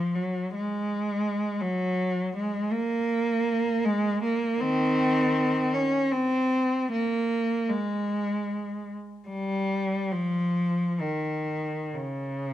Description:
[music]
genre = classical, free, expressive piece for unaccompanied cello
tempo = 60-85 BPM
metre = 3/4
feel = rubato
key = Eb minor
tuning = A4 = 439 Hz
[part]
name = rich cello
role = solo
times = 0.0-12.5 s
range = Db3 to Db4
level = -25 LUFS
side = equal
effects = none
[sound]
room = light reverb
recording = close, detailed microphones, faint mains hum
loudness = -24 LUFS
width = side -12 dB against mid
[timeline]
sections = 0.0-12.5 A section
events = none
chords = none

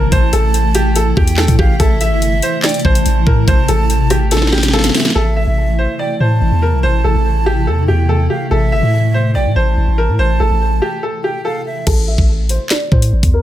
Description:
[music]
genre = hip hop, drill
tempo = 143 BPM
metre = 4/4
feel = half-time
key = A minor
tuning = A4 = 441 Hz
[part]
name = bright upright piano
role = melody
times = 0.0-13.4 s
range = G4 to E5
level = -19 LUFS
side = left 1 dB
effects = low-pass filter, ping-pong delay
[part]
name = breathy hollow jazz flute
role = second line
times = 0.0-11.9 s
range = E5 to A5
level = -23 LUFS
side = right 5 dB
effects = ping-pong delay
[part]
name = granular cloud pad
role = sustained chords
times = 0.0-11.8 s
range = C3 to E4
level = -21 LUFS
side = equal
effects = built-in reverb
[part]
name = long sustained 808-style bass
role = bass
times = 0.0-13.4 s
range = G1 to A2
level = -14 LUFS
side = equal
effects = none
[part]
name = drill drum kit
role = drums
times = 0.1-5.2, 11.9-13.3 s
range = crash cymbal, handclaps, hi-hat, kick drum, rim click, snare drum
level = -14 LUFS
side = equal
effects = none
[sound]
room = light reverb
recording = none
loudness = -12 LUFS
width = side -12 dB against mid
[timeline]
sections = 0.0-5.2 A section; 5.2-11.9 B section; 11.9-13.4 C section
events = drum fill 4.3-5.2; break 11.0-11.9; filter sweep on upright piano 11.9-13.4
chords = 0.0 Am

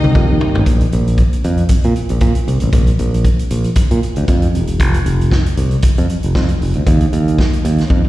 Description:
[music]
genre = disco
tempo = 116 BPM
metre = 4/4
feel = swing 56% on 16ths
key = unclear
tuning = A4 = 438 Hz
[part]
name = clear studio string section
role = second line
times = 0.0-0.6 s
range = Eb4 to Eb5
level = -23 LUFS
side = left 3 dB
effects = plate reverb, slapback echo
[part]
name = mellow tonewheel organ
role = sustained chords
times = 0.0-0.6 s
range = Eb3 to G4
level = -21 LUFS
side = right 3 dB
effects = slow rotary speaker, plate reverb
[part]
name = modern bright fingered electric bass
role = bass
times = 0.0-8.0 s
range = E1 to Bb2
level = -14 LUFS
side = equal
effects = none
[part]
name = vintage drum kit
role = drums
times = 0.0-8.1 s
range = hi-hat, kick drum, snare drum, toms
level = -15 LUFS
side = equal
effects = none
[sound]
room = little or no reverb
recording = live gig heard through the venue's PA, recital hall reverb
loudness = -12 LUFS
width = side -16 dB against mid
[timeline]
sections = 0.7-8.1 A section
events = drum fill 0.0-0.7, 7.9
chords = 0.0 F9sus4; 0.7 N.C.; 4.8 F5; 6.9 N.C.

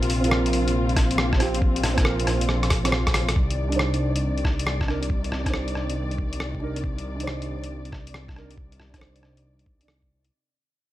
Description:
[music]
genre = future garage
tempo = 138 BPM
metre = 4/4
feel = swing 66% on 16ths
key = C minor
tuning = A4 = 440 Hz
[part]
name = dark studio string section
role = sustained chords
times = 0.0-10.3 s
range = C3 to D5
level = -30 LUFS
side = left 2 dB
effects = sidechain pumping
[part]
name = dark detuned saw bass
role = bass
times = 0.0-10.3 s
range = Bb1 to C2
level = -26 LUFS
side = equal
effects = sidechain pumping
[part]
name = lo-fi sampler-style drum kit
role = drums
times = 0.0-10.3 s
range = hi-hat, rim click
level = -27 LUFS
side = equal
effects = studio ambience
[part]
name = felt-muted upright piano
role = accompaniment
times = 0.2-9.9 s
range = C4 to D5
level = -30 LUFS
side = right 3 dB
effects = sidechain pumping, low-pass filter, ping-pong delay
[part]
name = electronic kick drum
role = drums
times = 1.0-10.1 s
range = none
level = -25 LUFS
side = equal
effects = studio ambience
[sound]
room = light reverb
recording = vinyl crackle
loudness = -21 LUFS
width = side -14 dB against mid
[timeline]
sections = 0.0-3.4 A section; 3.4-10.3 B section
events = drum fill 2.5-3.4; fade-out 3.4-10.3; filter sweep on felt piano 3.4-10.3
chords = 0.0 Bbsus2; 3.4 Cmadd9

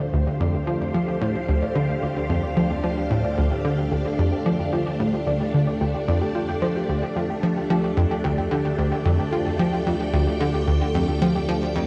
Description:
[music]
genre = ambient, sequencer-driven space music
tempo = 111 BPM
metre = 4/4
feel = straight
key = unclear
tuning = A4 = 440 Hz
[part]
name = string machine, full ensemble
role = sustained chords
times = 0.0-11.9 s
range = A3 to G5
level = -30 LUFS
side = equal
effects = phaser, ensemble chorus
[part]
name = soft round pluck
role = arpeggios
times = 0.0-11.8 s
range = G4 to G5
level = -33 LUFS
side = equal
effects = chorus, cassette tape, delay
[part]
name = plucky analog bass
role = riff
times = 0.0-11.8 s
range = D2 to F3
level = -25 LUFS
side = equal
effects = lush chorus, delay
[part]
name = analog drone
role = bass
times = 0.0-11.9 s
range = D2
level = -34 LUFS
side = equal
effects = chorus
[sound]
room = wet plate reverb, RT60 3.0 s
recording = dark, warm production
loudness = -23 LUFS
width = mono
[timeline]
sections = 0.0-11.9 A section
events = none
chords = 0.0 Dm

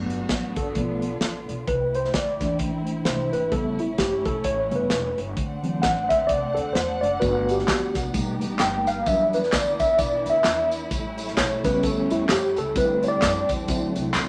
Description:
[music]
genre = uptempo gospel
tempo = 130 BPM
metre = 4/4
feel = swing 60% on 8ths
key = unclear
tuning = A4 = 437 Hz
[part]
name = mellow tine electric piano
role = accompaniment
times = 0.0-14.3 s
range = C#3 to G5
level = -25 LUFS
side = equal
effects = none
[part]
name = warm studio string section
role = sustained chords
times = 0.0-14.3 s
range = E3 to F#5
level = -34 LUFS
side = equal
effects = none
[part]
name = upright bass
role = bass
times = 0.0-14.3 s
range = E1 to F#2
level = -36 LUFS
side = equal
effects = none
[part]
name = modern studio drum kit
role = drums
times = 0.1-14.3 s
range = hi-hat, kick drum, snare drum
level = -31 LUFS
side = equal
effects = none
[part]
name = tambourine and handclaps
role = percussion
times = 7.2-14.3 s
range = none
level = -33 LUFS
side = equal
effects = none
[sound]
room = moderate studio reverb, RT60 0.8 s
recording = none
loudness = -24 LUFS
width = mono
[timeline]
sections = 0.0-14.3 A section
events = tine electric piano solo 0.0-14.3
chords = 0.0 Gmaj7; 0.8 Bm7b5; 1.7 C6; 3.5 A7; 5.4 D7; 7.2 Gmaj7; 8.1 Baug7; 9.1 Em7; 10.9 A7; 12.8 D7sus4; 13.7 D7

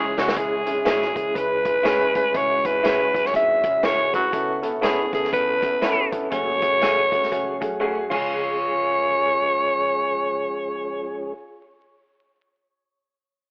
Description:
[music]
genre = uptempo 1960s-style soul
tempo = 121 BPM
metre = 4/4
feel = swing 61% on 8ths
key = C# minor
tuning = A4 = 441 Hz
[part]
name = growling alto saxophone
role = melody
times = 0.0-11.3 s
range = F#4 to E5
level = -24 LUFS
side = equal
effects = analog delay
[part]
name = warm upright piano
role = accompaniment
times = 0.0-11.3 s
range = G#3 to C#5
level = -31 LUFS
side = equal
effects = none
[part]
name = tonewheel organ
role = sustained chords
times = 0.0-11.3 s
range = E3 to A4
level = -34 LUFS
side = equal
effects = slow rotary speaker, overdrive
[part]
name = electric guitar through a small old amp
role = stabs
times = 0.0-11.6 s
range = A3 to C#5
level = -31 LUFS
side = equal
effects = none
[part]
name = upright bass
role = bass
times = 0.0-11.3 s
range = E1 to C#3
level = -45 LUFS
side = equal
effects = none
[part]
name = vintage drum kit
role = drums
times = 0.2-8.2 s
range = crash cymbal, hi-hat, kick drum, snare drum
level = -32 LUFS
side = equal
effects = vintage 12-bit sampler grit
[sound]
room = moderate spring reverb, RT60 1.7 s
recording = vinyl crackle, telephone sound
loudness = -22 LUFS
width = mono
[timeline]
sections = 0.4-8.3 A section; 8.3-12.3 B section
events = drum fill 0.0-0.4, 7.8-8.3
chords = 0.4 C#m; 4.3 Aadd9; 6.3 F#madd9; 8.1 C#

